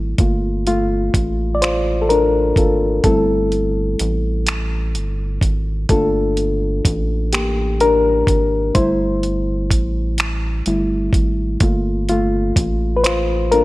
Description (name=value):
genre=slow six-eight R&B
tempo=42 BPM (dotted quarters)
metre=6/8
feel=straight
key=G dorian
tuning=A4 = 440 Hz
part: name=reed electric piano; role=accompaniment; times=0.0-13.6 s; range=G3 to D5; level=-18 LUFS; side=left 1 dB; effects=none
part: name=rubbery square bass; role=bass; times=0.0-13.6 s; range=G1 to A1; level=-21 LUFS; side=equal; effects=none
part: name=dusty soul sampler-style drum kit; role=drums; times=0.2-13.6 s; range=finger snaps, hi-hat, kick drum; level=-19 LUFS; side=right 1 dB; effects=none
room=light reverb, digital ambience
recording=none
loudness=-15 LUFS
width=side -18 dB against mid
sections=0.0-13.6 A section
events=reed electric piano solo 0.0-13.6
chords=0.2 Gm9; 3.0 Am7/G; 5.9 Gm9; 8.8 Am7/G; 11.6 Gm9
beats=| 0.18 1.61 | 3.04 4.47 | 5.89 7.32 | 8.75 10.18 | 11.61 13.04